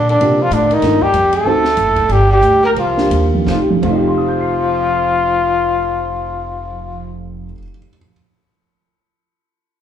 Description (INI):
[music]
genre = jazz, small-group swing and bop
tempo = 165-194 BPM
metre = 4/4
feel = swing 61% on 8ths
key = F mixolydian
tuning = A4 = 440 Hz
[part]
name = breathy trumpet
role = melody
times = 0.0-7.1 s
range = D4 to Bb4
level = -15 LUFS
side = left 2 dB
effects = slapback echo
[part]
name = clear tenor saxophone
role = second line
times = 0.0-7.1 s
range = D3 to Bb3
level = -24 LUFS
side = right 4 dB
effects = slapback echo
[part]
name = upright bass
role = bass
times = 0.0-7.5 s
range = F1 to C3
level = -20 LUFS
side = equal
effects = none
[part]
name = compact cocktail drum kit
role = drums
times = 0.1-3.9 s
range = crash cymbal, hi-hat, kick drum, ride cymbal, snare drum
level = -28 LUFS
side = equal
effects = none
[part]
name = dark upright piano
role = accompaniment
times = 0.2-8.1 s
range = F2 to C7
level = -20 LUFS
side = right 2 dB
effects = none
[sound]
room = light reverb, small room ambience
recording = live gig heard through the venue's PA, club reverb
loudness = -12 LUFS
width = side -9 dB against mid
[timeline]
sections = 0.0-3.5 A section; 3.5-6.4 B section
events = slowing down 0.8-3.5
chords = 0.2 C9sus4; 0.8 Gm9; 1.5 D7b9; 2.1 G5; 2.8 C9sus4; 3.5 F9